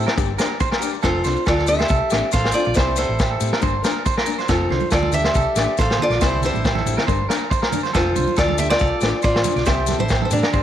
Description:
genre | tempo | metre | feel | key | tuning
highlife guitar band | 139 BPM | 4/4 | straight | F major | A4 = 441 Hz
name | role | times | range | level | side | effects
picked steel-string acoustic guitar | melody | 0.0-10.6 s | D4 to F5 | -21 LUFS | equal | none
fingerpicked steel-string acoustic guitar | accompaniment | 0.0-10.6 s | F3 to Bb4 | -30 LUFS | left 12 dB | none
clean electric guitar | arpeggios | 0.0-10.6 s | G4 to D5 | -25 LUFS | right 7 dB | tape echo
hollow-body short-scale fingered electric bass | bass | 0.0-10.6 s | F1 to A2 | -24 LUFS | equal | none
vintage drum kit | drums | 0.1-10.6 s | kick drum, snare drum | -22 LUFS | equal | none
agogo bells | percussion | 0.1-10.5 s | none | -31 LUFS | left 13 dB | none
maracas | percussion | 0.1-10.6 s | none | -33 LUFS | left 11 dB | none
congas | percussion | 4.5-10.4 s | none | -29 LUFS | right 9 dB | none
room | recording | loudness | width
light reverb | 1960s-style stereo with parts hard left and right | -17 LUFS | side -10 dB against mid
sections
0.0-10.6 A section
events
none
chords
0.2 Gm; 1.0 F6; 2.8 C; 3.6 Gm; 4.5 F6; 6.2 C; 7.1 Gm; 7.9 F6; 9.7 C

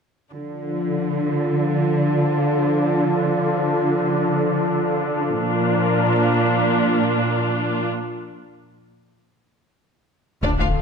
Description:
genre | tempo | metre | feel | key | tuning
cinematic | free time | none | none | D minor | A4 = 440 Hz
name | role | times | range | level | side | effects
warm symphonic viola section | accompaniment | 0.3-10.7 s | D4 to F4 | -24 LUFS | equal | low-pass filter
warm analog pad | sustained chords | 0.3-10.8 s | D3 to Bb4 | -22 LUFS | left 2 dB | chorus, low-pass filter
warm symphonic cello section | bass | 0.3-10.7 s | D2 to D3 | -23 LUFS | right 3 dB | none
warm symphonic violin section | second line | 10.4-10.7 s | D4 to F5 | -24 LUFS | left 5 dB | none
sub bass with octave | bass | 10.4-10.8 s | D1 | -24 LUFS | equal | none
impact | sound effects | 10.4-10.8 s | none | -25 LUFS | left 1 dB | none
room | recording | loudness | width
moderate scoring stage reverb, RT60 1.6 s | none | -18 LUFS | side -6 dB against mid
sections
0.3-10.4 A section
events
filter sweep 0.3-10.4; break 7.9-10.4; impact 10.4-10.8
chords
0.3 Dm; 5.4 Bb; 7.9 N.C.

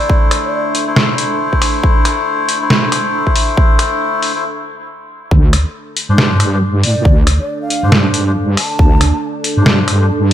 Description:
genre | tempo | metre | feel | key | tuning
deep dubstep | 138 BPM | 4/4 | swing 59% on 16ths, half-time | D minor | A4 = 440 Hz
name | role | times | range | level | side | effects
breathy mellow low ney | melody | 0.0-0.6, 6.8-9.2 s | D5 to A5 | -24 LUFS | equal | dub echo
dark analog pad | sustained chords | 0.0-10.3 s | D4 to A4 | -23 LUFS | right 3 dB | chorus
melodica | stabs | 0.0-10.1 s | F3 to C5 | -19 LUFS | left 3 dB | dub echo
electronic kick drum | drums | 0.1-8.9 s | none | -12 LUFS | equal | overdrive
trip hop sampler-style drum kit | drums | 0.3-10.3 s | finger snaps, hi-hat, snare drum | -15 LUFS | equal | none
wobble bass | bass | 5.3-10.3 s | D2 to A2 | -13 LUFS | equal | chorus
room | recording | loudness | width
moderate echo chamber reverb, RT60 1.4 s, digital ambience | none | -11 LUFS | side -11 dB against mid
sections
0.0-5.3 A section; 5.3-10.3 B section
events
build-up 0.0-5.3; break 4.4-5.3; drop 5.3-10.3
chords
0.0 Am; 5.3 Dm7

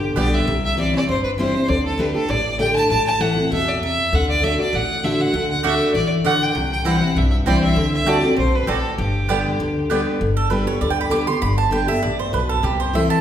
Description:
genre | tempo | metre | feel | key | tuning
bluegrass | 197 BPM | 4/4 | straight | G major | A4 = 443 Hz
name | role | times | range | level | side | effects
rich fiddle | melody | 0.0-9.9 s | G4 to A5 | -22 LUFS | equal | none
picked steel-string acoustic guitar | accompaniment | 0.0-13.2 s | G2 to G4 | -20 LUFS | left 1 dB | none
upright bass | bass | 0.0-13.1 s | G1 to E2 | -24 LUFS | equal | none
mandolin | stabs | 0.2-0.3, 5.6-13.2 s | A3 to D6 | -23 LUFS | right 5 dB | none
room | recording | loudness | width
wet recital hall reverb, RT60 1.4 s | recorded in a church or concert hall | -17 LUFS | side -10 dB against mid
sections
0.5-10.2 A section; 10.2-13.2 B section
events
mandolin solo 10.2-13.2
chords
0.5 C; 1.7 Dsus4; 2.9 Am; 4.1 D; 6.6 C; 7.8 D7; 9.0 G; 12.6 C6

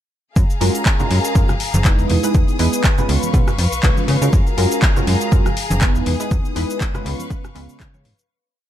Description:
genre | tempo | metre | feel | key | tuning
filtered disco house | 121 BPM | 4/4 | swing 56% on 16ths | F# major | A4 = 440 Hz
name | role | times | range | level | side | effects
clear studio string section | sustained chords | 0.4-8.3 s | G#4 to D#6 | -27 LUFS | left 4 dB | sidechain pumping
slap-like FM bass | bass | 0.4-8.1 s | F#1 to C#3 | -19 LUFS | equal | sidechain pumping
electronic kick drum | drums | 0.4-7.9 s | none | -16 LUFS | equal | overdrive
house drum kit | drums | 0.4-8.3 s | handclaps, hi-hat, rim click, shaker | -24 LUFS | left 1 dB | sidechain pumping on hats, sidechain pumping on perc
tube shaker and congas | percussion | 0.4-8.3 s | none | -28 LUFS | right 1 dB | sidechain pumping on perc
funky polysynth comp | accompaniment | 0.6-8.1 s | G#3 to C#5 | -22 LUFS | right 1 dB | chorus, phaser, sidechain pumping
room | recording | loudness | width
digital ambience | none | -15 LUFS | side -11 dB against mid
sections
0.4-8.3 drop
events
drop 0.4-8.3; fade-out 5.7-8.3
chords
0.4 F#maj9; 2.1 Emaj7; 3.1 C#7; 4.3 F#maj9; 6.1 Emaj7; 7.1 C#7

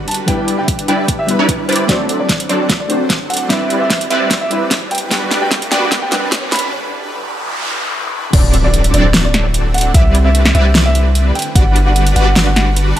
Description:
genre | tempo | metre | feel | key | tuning
future bass | 149 BPM | 4/4 | half-time | G major | A4 = 440 Hz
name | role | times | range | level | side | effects
soft round pluck | accompaniment | 0.0-6.5 s | G3 to C5 | -22 LUFS | left 1 dB | ensemble chorus, sidechain pumping, dub echo
shimmering ambient pad | sustained chords | 0.0-13.0 s | D3 to C5 | -26 LUFS | equal | chorus, built-in reverb, sidechain pumping
supersaw stab | riff | 0.0-13.0 s | F#3 to D5 | -18 LUFS | right 1 dB | ensemble chorus, sidechain pumping, low-pass filter
dark grand piano | melody | 0.1-13.0 s | C5 to B5 | -21 LUFS | right 1 dB | sidechain pumping, dub echo
pop drum kit | drums | 0.1-13.0 s | crash cymbal, hi-hat, snare drum | -16 LUFS | equal | small room reverb
electronic kick drum | drums | 0.3-11.6 s | none | -15 LUFS | equal | small room reverb
riser, noise sweep and impact | sound effects | 4.1-9.9 s | none | -23 LUFS | equal | none
long sustained 808-style bass | bass | 8.3-12.9 s | D1 to C2 | -13 LUFS | equal | sidechain pumping
room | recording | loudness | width
moderate digital room reverb, RT60 0.8 s, digital ambience | high-pass filter | -11 LUFS | side -12 dB against mid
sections
0.0-8.3 A section; 8.3-13.0 B section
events
build-up 0.0-8.3; filter sweep 0.0-8.3; drum fill 1.9-6.7; riser 4.1-6.7; break 6.7-8.3; noise sweep 6.7-8.3; drop 8.3-13.0; impact 8.3-9.9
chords
0.1 Em7; 1.9 D7; 3.5 Cmaj9; 4.9 Gmaj7; 6.5 Em7; 8.3 D7; 9.9 Cmaj9; 11.4 Gmaj7

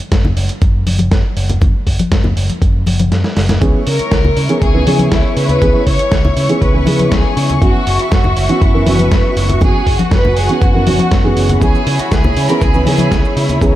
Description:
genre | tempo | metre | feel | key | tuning
nu-disco, nu disco | 120 BPM | 4/4 | straight | C# dorian | A4 = 440 Hz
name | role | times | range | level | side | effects
picked electric bass with an envelope filter | bass | 0.0-13.7 s | F#1 to C#3 | -16 LUFS | equal | none
dusty soul sampler-style drum kit | drums | 0.0-13.7 s | hi-hat, snare drum | -22 LUFS | equal | overdrive
electronic kick drum | drums | 0.1-13.7 s | none | -14 LUFS | equal | overdrive
congas and maracas | percussion | 0.2-13.7 s | none | -20 LUFS | left 2 dB | none
dark grand piano | accompaniment | 3.6-13.8 s | E3 to B4 | -18 LUFS | right 2 dB | vintage 12-bit sampler grit
rich studio string section | sustained chords | 3.6-13.8 s | E4 to C#6 | -21 LUFS | equal | sidechain pumping
rich chamber violin section | melody | 3.9-13.3 s | E4 to C#5 | -19 LUFS | left 1 dB | analog delay
room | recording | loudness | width
light reverb, studio ambience | none | -10 LUFS | side -14 dB against mid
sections
0.0-13.8 A section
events
kick drops out 3.1-3.6; drum fill 3.1-3.6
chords
0.0 N.C.; 3.6 C#m7; 7.6 F#7sus4; 11.6 C#m7

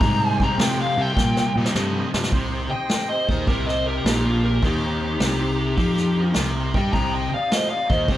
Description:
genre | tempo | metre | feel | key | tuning
blues rock power trio and southern rock | 104 BPM | 4/4 | swing 68% on 8ths | C minor | A4 = 441 Hz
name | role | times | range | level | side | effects
biting lead guitar | melody | 0.0-8.2 s | F4 to Bb5 | -25 LUFS | left 2 dB | overdrive
overdriven tonewheel organ | sustained chords | 0.0-7.9 s | C4 to Eb5 | -33 LUFS | right 3 dB | slow rotary speaker, chorus vibrato
sludgy distorted guitar | riff | 0.0-8.2 s | Bb2 to A3 | -25 LUFS | left 1 dB | overdrive
fuzz fingered electric bass | bass | 0.0-8.2 s | Bb1 to C3 | -25 LUFS | equal | overdrive
vintage brush drum kit | drums | 0.0-8.2 s | hi-hat, kick drum, snare drum | -24 LUFS | equal | none
smooth overdriven lead guitar | second line | 2.7-8.2 s | D4 to G5 | -32 LUFS | right 2 dB | none
room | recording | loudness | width
moderate large studio reverb, RT60 1.2 s | band playing live in one room | -19 LUFS | side -13 dB against mid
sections
0.0-2.3 A section; 2.3-8.2 B section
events
lead electric guitar solo 0.0-2.3; drum fill 1.2-2.3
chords
0.0 Cm

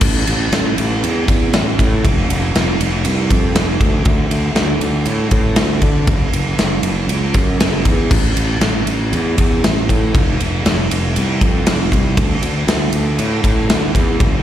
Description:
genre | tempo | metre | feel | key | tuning
quiet-loud alternative rock | 118 BPM | 4/4 | straight | unclear | A4 = 439 Hz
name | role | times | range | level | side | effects
fuzz fingered electric bass | bass | 0.0-14.4 s | F1 to D3 | -17 LUFS | equal | overdrive
big rock drum kit | drums | 0.0-14.3 s | crash cymbal, kick drum, ride cymbal, snare drum | -16 LUFS | equal | none
room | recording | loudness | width
little or no reverb | live gig heard through the venue's PA, recital hall reverb | -13 LUFS | side -11 dB against mid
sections
0.0-14.4 A section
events
none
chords
none

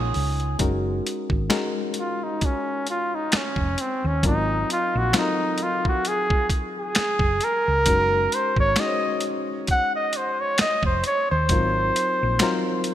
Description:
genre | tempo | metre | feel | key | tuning
R&B, neo-soul | 66 BPM | 4/4 | swing 55% on 16ths | Gb lydian | A4 = 440 Hz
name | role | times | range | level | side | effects
electric guitar through a small old amp | second line | 0.0-0.6 s | Ab4 | -32 LUFS | right 4 dB | none
reed electric piano | accompaniment | 0.0-12.9 s | Gb3 to Db5 | -29 LUFS | left 3 dB | none
hollow-body short-scale fingered electric bass | bass | 0.0-12.4 s | F1 to Eb2 | -25 LUFS | equal | none
boom bap sampler-style drum kit | drums | 0.1-12.9 s | finger snaps, hi-hat, kick drum, snare drum | -24 LUFS | equal | none
warm flugelhorn | melody | 2.0-12.9 s | C4 to Gb5 | -23 LUFS | equal | none
room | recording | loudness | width
moderate lush hall reverb, RT60 2.5 s | bright 1980s-style digital production | -20 LUFS | side -11 dB against mid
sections
0.6-12.9 A section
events
flugelhorn solo 0.6-12.9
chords
0.0 Gbmaj13 (rootless); 0.6 Gb69; 4.2 Ab13; 7.9 Gb69; 11.5 Ab13

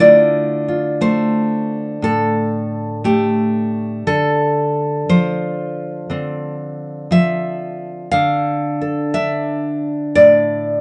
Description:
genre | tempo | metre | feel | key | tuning
solo jazz | 59 BPM | 4/4 | swing 67% on 8ths | D minor | A4 = 441 Hz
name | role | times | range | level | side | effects
nylon-string guitar | solo | 0.0-10.8 s | A2 to F5 | -17 LUFS | equal | none
room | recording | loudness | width
light reverb | band playing live in one room, nothing above 10.4 kHz | -18 LUFS | mono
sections
0.0-10.8 A section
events
none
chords
0.0 Dm9

